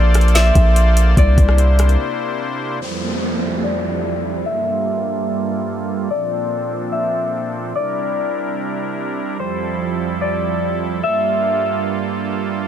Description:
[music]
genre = hip hop, atmospheric cloud-rap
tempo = 146 BPM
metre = 4/4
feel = half-time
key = F major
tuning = A4 = 440 Hz
[part]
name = concert harp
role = melody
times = 0.0-12.7 s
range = C5 to E5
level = -22 LUFS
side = left 2 dB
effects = low-pass filter, ping-pong delay
[part]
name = pipe organ, strings celeste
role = sustained chords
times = 0.0-12.7 s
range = F2 to D5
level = -22 LUFS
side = right 3 dB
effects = sidechain pumping, low-pass filter
[part]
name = long sustained 808-style bass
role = bass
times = 0.0-2.0 s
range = Bb1 to C2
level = -12 LUFS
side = equal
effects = none
[part]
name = smooth R&B drum kit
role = drums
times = 0.1-2.0 s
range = hi-hat, kick drum, rim click, snare drum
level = -17 LUFS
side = equal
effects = none
[part]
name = downlifter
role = sound effects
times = 2.8-6.1 s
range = none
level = -26 LUFS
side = equal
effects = none
[sound]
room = light reverb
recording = none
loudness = -16 LUFS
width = side -9 dB against mid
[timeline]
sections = 0.0-2.8 A section; 2.8-12.7 B section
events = break 2.0-2.8; filter sweep 2.8-12.7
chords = 0.0 Bbmaj7; 1.2 C7; 2.8 Fmaj7; 4.5 Gm7; 6.1 Bbmaj7; 7.7 C7; 9.4 Fmaj7; 11.0 Gm7

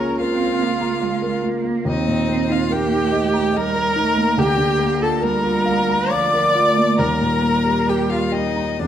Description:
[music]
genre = classical, slow romantic movement for piano quartet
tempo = 62-74 BPM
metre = 3/4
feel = rubato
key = unclear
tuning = A4 = 442 Hz
[part]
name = warm violin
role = melody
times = 0.0-8.9 s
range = D5 to D6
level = -24 LUFS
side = left 8 dB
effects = none
[part]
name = warm cello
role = second line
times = 0.0-8.9 s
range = F3 to Db4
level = -24 LUFS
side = right 6 dB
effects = none
[part]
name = dark concert grand piano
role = accompaniment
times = 0.0-8.9 s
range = Db2 to Bb5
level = -21 LUFS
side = left 1 dB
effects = none
[part]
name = rich viola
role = accompaniment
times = 0.0-8.9 s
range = D4 to D5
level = -21 LUFS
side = right 2 dB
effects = none
[sound]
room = moderate scoring stage reverb, RT60 1.5 s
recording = close, detailed microphones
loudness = -16 LUFS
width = side -10 dB against mid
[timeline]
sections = 0.0-8.9 A section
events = none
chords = 0.0 Bbm/Db; 1.9 Eb; 4.4 Bb/D; 7.0 Eb

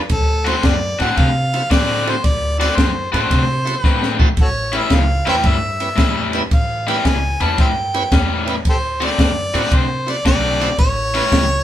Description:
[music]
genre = electric blues shuffle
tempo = 112 BPM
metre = 4/4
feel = swing 67% on 8ths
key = D mixolydian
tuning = A4 = 438 Hz
[part]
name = bright tonewheel organ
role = accompaniment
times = 0.0-11.2 s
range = E4 to E5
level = -25 LUFS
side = right 4 dB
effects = slow rotary speaker, overdrive
[part]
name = warm harmonica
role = melody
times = 0.1-11.6 s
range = F#4 to A5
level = -21 LUFS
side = equal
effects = overdrive
[part]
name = upright bass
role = bass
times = 0.1-11.6 s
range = A1 to C3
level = -22 LUFS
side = equal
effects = none
[part]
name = compact cocktail drum kit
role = drums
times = 0.1-11.5 s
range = kick drum, ride cymbal, snare drum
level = -18 LUFS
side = equal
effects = none
[part]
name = cranked stack guitar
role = riff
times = 0.4-11.4 s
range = A2 to F#4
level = -20 LUFS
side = left 4 dB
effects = overdrive
[sound]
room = light reverb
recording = band playing live in one room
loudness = -14 LUFS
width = side -12 dB against mid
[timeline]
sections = 0.0-11.6 A section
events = drum fill 3.8-4.4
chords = 0.1 D7; 4.4 A7; 8.7 D7; 10.8 A7

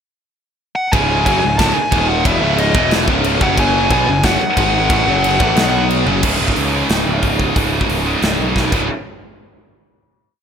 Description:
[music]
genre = heavy metal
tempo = 181 BPM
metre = 4/4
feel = straight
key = C# minor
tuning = A4 = 443 Hz
[part]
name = high-gain lead guitar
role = melody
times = 0.8-5.9 s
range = D#5 to A5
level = -18 LUFS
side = left 1 dB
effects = distortion, slapback echo
[part]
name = biting overdriven guitar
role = riff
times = 0.9-6.2 s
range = C#2 to B3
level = -22 LUFS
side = equal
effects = none
[part]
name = scooped high-gain guitar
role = riff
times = 0.9-8.9 s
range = C#2 to B3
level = -21 LUFS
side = left 13 dB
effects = distortion
[part]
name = scooped high-gain guitar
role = riff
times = 0.9-8.9 s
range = C#2 to B3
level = -20 LUFS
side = right 12 dB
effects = distortion
[part]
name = fuzz picked electric bass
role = bass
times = 0.9-8.9 s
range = C#1 to C#2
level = -20 LUFS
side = equal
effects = overdrive
[part]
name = big rock drum kit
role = drums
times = 0.9-8.8 s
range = crash cymbal, hi-hat, kick drum, snare drum, toms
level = -19 LUFS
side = equal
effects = none
[sound]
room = studio ambience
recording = none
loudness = -13 LUFS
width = side -7 dB against mid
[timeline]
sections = 0.0-0.9 pickup bar; 0.9-6.2 riff; 6.2-8.9 outro; 8.9-10.2 final hit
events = drum fill 6.1, 8.6-8.9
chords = 0.0 N.C.; 0.9 C#5; 1.9 D#5; 2.3 C#m; 2.7 E5; 3.1 C#5; 3.6 F#5; 4.6 G#5; 4.9 F#5; 5.6 B5; 6.1 F#5; 6.2 C#5; 8.9 N.C.

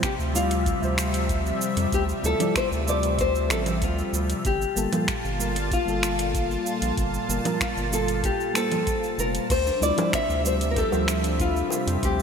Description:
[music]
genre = sunset chillout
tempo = 95 BPM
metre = 4/4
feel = straight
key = D minor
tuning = A4 = 440 Hz
[part]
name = nylon-string guitar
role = melody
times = 0.0-12.2 s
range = F4 to E5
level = -27 LUFS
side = left 2 dB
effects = digital delay
[part]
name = mellow FM electric piano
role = accompaniment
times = 0.0-12.2 s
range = F3 to E5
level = -30 LUFS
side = moving between left 7 dB and right 4 dB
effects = chorus, auto-pan, digital delay
[part]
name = lush unison pad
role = sustained chords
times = 0.0-12.2 s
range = Bb2 to A5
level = -30 LUFS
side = equal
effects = chorus, phaser
[part]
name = deep house drum kit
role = drums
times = 0.0-12.2 s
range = cabasa, congas, crash cymbal, finger snaps, hi-hat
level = -30 LUFS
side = right 2 dB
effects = overdrive
[part]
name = electronic kick drum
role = drums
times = 0.0-12.2 s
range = none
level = -30 LUFS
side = equal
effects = overdrive
[part]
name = round analog bass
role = bass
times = 0.2-12.2 s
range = F1 to F2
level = -28 LUFS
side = equal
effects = none
[part]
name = concert harp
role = arpeggios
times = 9.5-12.2 s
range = C4 to G4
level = -33 LUFS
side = left 1 dB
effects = digital delay
[part]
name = bongos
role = percussion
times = 10.0-11.8 s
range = none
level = -36 LUFS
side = left 5 dB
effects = none
[sound]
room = moderate lush hall reverb, RT60 2.8 s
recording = bright 1980s-style digital production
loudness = -22 LUFS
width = side -6 dB against mid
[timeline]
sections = 0.0-12.2 A section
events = none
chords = 0.0 Dm11; 4.4 Gm9; 9.5 Dm11

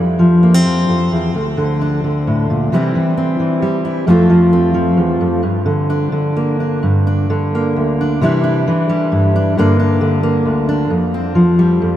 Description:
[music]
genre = folk, solo fingerstyle acoustic guitar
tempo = 132 BPM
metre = 3/4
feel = rubato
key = G dorian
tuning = A4 = 440 Hz
[part]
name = fingerpicked steel-string acoustic guitar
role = solo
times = 0.0-12.0 s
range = D2 to F4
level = -12 LUFS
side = equal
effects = none
[sound]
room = wet huge ambient reverb, RT60 7.8 s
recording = in a vast, echoing space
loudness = -12 LUFS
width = side -12 dB against mid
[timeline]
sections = 0.0-6.8 A section; 6.8-12.0 B section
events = none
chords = 0.0 F5; 1.4 D5; 2.7 C; 4.1 F; 5.4 Gm; 8.2 Cadd9; 9.6 Gm; 10.9 Fsus2

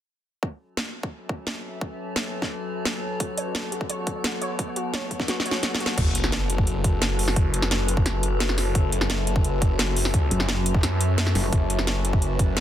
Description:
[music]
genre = dark technical drum and bass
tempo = 173 BPM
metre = 4/4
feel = straight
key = F# minor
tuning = A4 = 436 Hz
[part]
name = metallic inharmonic drone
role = sustained chords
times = 1.2-12.6 s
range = F#3 to B4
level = -32 LUFS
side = left 2 dB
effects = chorus, built-in reverb, vintage 12-bit sampler grit, sidechain pumping
[part]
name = electronic kick drum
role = drums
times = 0.4-12.5 s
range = none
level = -23 LUFS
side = equal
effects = high-pass filter on kick, high-pass filter on room
[part]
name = warbly tape-like pad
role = texture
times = 1.4-12.6 s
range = F#4 to A5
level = -33 LUFS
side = left 2 dB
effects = chorus, built-in reverb, phaser, sidechain pumping
[part]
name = drum and bass drum kit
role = drums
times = 0.8-12.6 s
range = crash cymbal, hi-hat, snare drum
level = -26 LUFS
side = equal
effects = soft clipping on snare
[part]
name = warbly dusty pluck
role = arpeggios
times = 3.2-5.9 s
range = F#4 to C#5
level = -34 LUFS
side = right 2 dB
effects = ensemble chorus, sidechain pumping, digital delay
[part]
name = swell and sub drop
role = sound effects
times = 5.5-7.4 s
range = none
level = -33 LUFS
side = equal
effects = none
[part]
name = snarling distorted saw bass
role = bass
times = 6.0-12.6 s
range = F#1 to F#2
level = -25 LUFS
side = equal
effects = distortion, overdrive
[part]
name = metallic wobble bass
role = bass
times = 10.3-11.5 s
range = F#1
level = -24 LUFS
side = equal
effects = distortion, chorus
[sound]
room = light reverb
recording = dense, heavily limited modern master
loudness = -22 LUFS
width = side -11 dB against mid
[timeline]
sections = 0.4-6.0 A section; 6.0-12.6 B section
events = drum fill 5.3-6.0; swell 5.5-6.0; drop 6.0-12.6; impact 6.0-7.4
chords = 0.4 F#m

